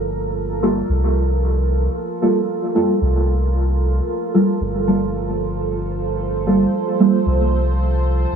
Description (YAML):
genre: dub techno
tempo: 113 BPM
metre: 4/4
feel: swing 54% on 16ths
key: G minor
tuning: A4 = 440 Hz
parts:
  - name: deep dark ambient pad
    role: sustained chords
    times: 0.0-8.4 s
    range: F4 to C5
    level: -23 LUFS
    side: right 3 dB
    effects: chorus, built-in reverb
  - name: soft dub sub bass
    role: bass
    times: 0.0-8.4 s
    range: G1 to C2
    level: -20 LUFS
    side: equal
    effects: none
  - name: deep mellow chord stab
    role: stabs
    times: 0.6-7.2 s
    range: G3 to A4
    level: -18 LUFS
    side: right 1 dB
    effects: chorus, phaser, dub echo
room: light reverb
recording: dry, gritty hardware recording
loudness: -16 LUFS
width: side -7 dB against mid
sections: 0.0-8.4 A section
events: none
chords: 0.0 Gm9